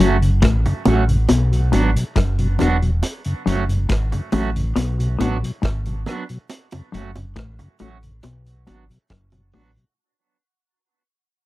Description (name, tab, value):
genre	roots reggae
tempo	69 BPM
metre	4/4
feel	straight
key	unclear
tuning	A4 = 440 Hz
part	electric guitar at the edge of break-up	accompaniment	0.0-9.7 s	F#3 to F#4	-25 LUFS	right 5 dB	tremolo, dub echo
part	mellow tonewheel organ	accompaniment	0.0-9.8 s	F#2 to F#4	-23 LUFS	left 1 dB	chorus vibrato, slow rotary speaker
part	semi-hollow electric guitar	riff	0.0-9.7 s	E2 to B2	-22 LUFS	left 4 dB	spring reverb
part	deep dub fingered electric bass	bass	0.0-9.8 s	E1 to B1	-20 LUFS	equal	none
part	vintage drum kit	drums	0.0-10.0 s	hi-hat, kick drum, rim click	-25 LUFS	equal	none
part	bongos	percussion	0.9-9.7 s	none	-23 LUFS	right 4 dB	none
room	little or no reverb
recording	dry, close 1970s-style studio recording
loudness	-17 LUFS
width	side -17 dB against mid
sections	0.0-10.0 A section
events	fade-out 0.0-10.0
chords	0.0 F#m; 1.3 Bm; 3.0 F#m; 4.8 Bm; 6.5 F#m; 8.2 Bm